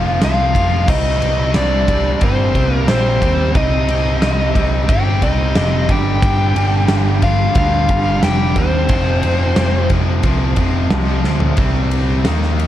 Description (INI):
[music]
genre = hard rock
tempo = 90 BPM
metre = 4/4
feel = straight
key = C minor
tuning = A4 = 440 Hz
[part]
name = dark smooth lead guitar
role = melody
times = 0.0-9.9 s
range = C5 to G5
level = -20 LUFS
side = left 2 dB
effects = overdrive, tape echo
[part]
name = octave-fuzz lead guitar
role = second line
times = 0.0-9.9 s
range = C4 to G4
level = -26 LUFS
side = right 2 dB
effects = distortion, plate reverb
[part]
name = biting overdriven guitar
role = riff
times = 0.0-12.7 s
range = F2 to Eb4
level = -25 LUFS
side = right 9 dB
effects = none
[part]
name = high-gain distorted guitar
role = riff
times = 0.0-12.7 s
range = F2 to Eb4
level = -24 LUFS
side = left 9 dB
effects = distortion
[part]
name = scooped high-gain guitar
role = riff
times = 0.0-12.7 s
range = F2 to Ab4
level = -29 LUFS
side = left 1 dB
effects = distortion
[part]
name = overdriven picked electric bass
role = bass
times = 0.0-12.7 s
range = F1 to Eb2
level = -17 LUFS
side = equal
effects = none
[part]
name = huge arena drum kit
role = drums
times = 0.2-12.7 s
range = crash cymbal, kick drum, ride cymbal, snare drum, toms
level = -18 LUFS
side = equal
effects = none
[sound]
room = moderate studio ambience, RT60 0.5 s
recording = cassette tape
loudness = -13 LUFS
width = side -12 dB against mid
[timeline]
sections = 0.0-11.6 A section; 11.6-12.7 B section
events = drum fill 11.3-11.6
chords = 0.0 Fm; 0.9 Cm; 5.9 Gm; 8.9 Fm; 11.6 C5